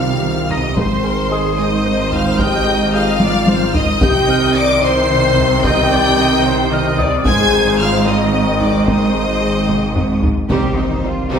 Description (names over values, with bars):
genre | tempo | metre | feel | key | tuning
cinematic, hybrid orchestral and electronic film score | 74 BPM (dotted quarters) | 6/8 | straight | C minor | A4 = 440 Hz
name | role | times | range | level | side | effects
rich studio violin section | melody | 0.0-11.4 s | C5 to D7 | -22 LUFS | equal | none
bright symphonic violin section | second line | 0.0-11.4 s | G3 to D6 | -22 LUFS | left 3 dB | none
rich symphonic viola section | accompaniment | 0.0-11.4 s | G3 to Eb5 | -22 LUFS | left 1 dB | none
dark French horn section | sustained chords | 0.0-11.4 s | C4 to D5 | -21 LUFS | left 5 dB | none
mellow trombone section | sustained chords | 0.0-11.4 s | Eb3 to C4 | -24 LUFS | right 2 dB | none
thumb-piano-like synth pluck | arpeggios | 0.0-11.4 s | C3 to Ab4 | -23 LUFS | right 4 dB | chorus
clear symphonic double bass section | bass | 0.0-11.4 s | Ab1 to C2 | -25 LUFS | right 4 dB | none
pure sine sub bass | bass | 0.0-11.4 s | Ab1 to C2 | -26 LUFS | left 1 dB | none
rich symphonic cello section | bass | 0.0-11.4 s | Ab2 to G4 | -21 LUFS | right 1 dB | none
felt-muted upright piano | texture | 0.0-10.5 s | Ab4 to Bb6 | -28 LUFS | left 2 dB | none
taiko ensemble | drums | 0.5-11.0 s | none | -20 LUFS | left 1 dB | none
impact | sound effects | 10.5-11.4 s | none | -23 LUFS | left 1 dB | none
room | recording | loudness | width
wet recital hall reverb, RT60 1.4 s | recorded in a church or concert hall | -12 LUFS | side -7 dB against mid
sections
0.0-10.5 A section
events
drum fill 3.2-4.0, 9.7-10.5; impact 10.5-11.4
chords
0.0 Cm; 0.8 Ab; 4.0 Cm; 7.3 Ab; 10.5 Cm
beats
| 0.77 1.58 | 2.39 3.20 | 4.01 4.82 | 5.63 6.45 | 7.26 8.07 | 8.88 9.69 | 10.50 11.31